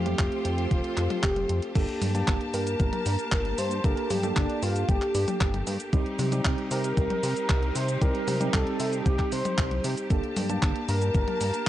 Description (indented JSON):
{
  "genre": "italo disco",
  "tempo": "115 BPM",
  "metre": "4/4",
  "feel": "straight",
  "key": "G minor",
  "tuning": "A4 = 444 Hz",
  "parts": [
    { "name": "wide unison lead", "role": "melody", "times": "0.0-11.7 s", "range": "D4 to C5", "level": "-31 LUFS", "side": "equal", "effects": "vintage 12-bit sampler grit, tape echo" },
    { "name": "bright studio string section", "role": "sustained chords", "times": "0.0-11.7 s", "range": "F3 to A5", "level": "-36 LUFS", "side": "left 1 dB", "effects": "none" },
    { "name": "mellow tine electric piano", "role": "stabs", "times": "0.0-11.7 s", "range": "G3 to A5", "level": "-32 LUFS", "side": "right 3 dB", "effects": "medium stereo tremolo" },
    { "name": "chorused synth bass", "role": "bass", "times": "0.0-11.7 s", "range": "F1 to C3", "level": "-29 LUFS", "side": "equal", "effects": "tube saturation" },
    { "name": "clean 12-bit digital drum machine", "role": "drums", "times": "0.1-11.6 s", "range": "cabasa, crash cymbal, handclaps, hi-hat, toms", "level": "-32 LUFS", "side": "left 2 dB", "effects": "none" },
    { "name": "electronic kick drum", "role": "drums", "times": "0.2-11.7 s", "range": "none", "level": "-26 LUFS", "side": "equal", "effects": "none" }
  ],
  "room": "digital ambience",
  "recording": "dry, gritty hardware recording, transformer saturation, cassette tape, nothing above 10.4 kHz",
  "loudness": "-24 LUFS",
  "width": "side -13 dB against mid",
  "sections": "0.0-1.8 A section; 1.8-11.7 B section",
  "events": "none",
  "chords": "0.0 Fadd9; 1.8 Gmadd9; 5.9 Cm; 10.1 Gmadd9"
}